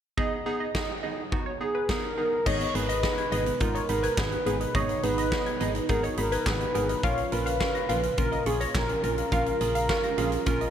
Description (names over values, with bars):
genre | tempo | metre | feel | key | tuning
synth-pop | 105 BPM | 4/4 | straight | G# dorian | A4 = 440 Hz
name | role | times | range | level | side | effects
funky polysynth comp | second line | 0.2-10.7 s | G#4 to E#5 | -34 LUFS | left 1 dB | chorus, analog delay
warm analog keys | accompaniment | 0.2-10.7 s | B3 to C#5 | -33 LUFS | right 3 dB | chorus
huge arena drum kit | drums | 0.2-10.7 s | crash cymbal, handclaps, hi-hat, kick drum, snare drum | -31 LUFS | equal | none
mellow horn-like synth lead | melody | 1.6-10.7 s | G#4 to C#5 | -29 LUFS | equal | chorus, analog delay
phased analog pad | sustained chords | 2.5-10.7 s | A#2 to E#4 | -37 LUFS | right 3 dB | phaser, chorus
soft round pluck | arpeggios | 2.5-10.7 s | D#3 to A#6 | -37 LUFS | left 2 dB | chorus, analog delay
solid FM bass | bass | 2.5-10.7 s | G#1 to A#1 | -32 LUFS | left 1 dB | none
room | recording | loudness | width
light reverb, small room ambience | none | -24 LUFS | side -9 dB against mid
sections
0.2-2.5 A section; 2.5-10.7 B section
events
none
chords
0.2 G#madd9; 2.5 G#m; 7.0 A#m